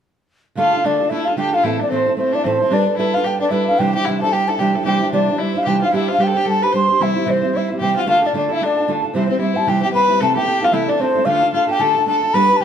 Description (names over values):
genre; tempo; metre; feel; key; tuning
celtic folk, Celtic reel; 224 BPM; 4/4; swing 58% on 8ths; D dorian; A4 = 440 Hz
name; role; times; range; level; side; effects
mellow baroque flute; melody; 0.6-12.6 s; C5 to C6; -17 LUFS; equal; none
warm fiddle; second line; 0.6-12.6 s; C4 to C5; -23 LUFS; left 6 dB; none
fingerpicked steel-string acoustic guitar; accompaniment; 0.6-12.6 s; A2 to C5; -20 LUFS; right 2 dB; none
room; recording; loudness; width
moderate studio reverb, RT60 0.8 s; band playing live in one room; -15 LUFS; side -8 dB against mid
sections
0.6-9.1 A section; 9.1-12.6 B section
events
none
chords
0.6 Dm; 1.6 Am; 2.7 Gadd9; 3.8 Cadd9; 5.9 Gsus4; 7.0 C; 8.1 Dm; 9.1 C; 10.2 Am/C; 11.3 Dm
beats
| 0.57 0.84 1.10 1.37 | 1.64 1.91 2.18 2.45 | 2.72 2.98 3.25 3.52 | 3.79 4.06 4.33 4.59 | 4.86 5.13 5.40 5.67 | 5.93 6.20 6.47 6.74 | 7.00 7.27 7.54 7.80 | 8.07 8.34 8.60 8.87 | 9.14 9.40 9.67 9.94 | 10.20 10.47 10.74 11.00 | 11.27 11.54 11.81 12.07 | 12.34 12.61